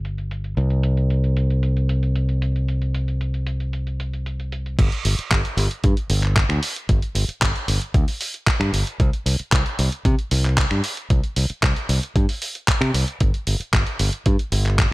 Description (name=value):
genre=nu-disco, nu disco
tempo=114 BPM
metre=4/4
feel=straight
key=unclear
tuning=A4 = 442 Hz
part: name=modern bright fingered electric bass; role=bass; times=0.0-14.9 s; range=G1 to C3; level=-20 LUFS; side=equal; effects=none
part: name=dusty soul sampler-style drum kit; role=drums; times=0.0-14.9 s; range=crash cymbal, finger snaps, handclaps, hi-hat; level=-24 LUFS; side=right 1 dB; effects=low-pass filter on hats, low-pass filter on cymbals, low-pass filter on snare, gated reverb
part: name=electronic kick drum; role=drums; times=4.8-14.9 s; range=none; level=-19 LUFS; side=equal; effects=none
room=little or no reverb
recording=bright 1980s-style digital production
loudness=-19 LUFS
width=side -20 dB against mid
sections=0.0-4.8 A section; 4.8-14.9 B section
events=drop 4.8-14.9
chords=none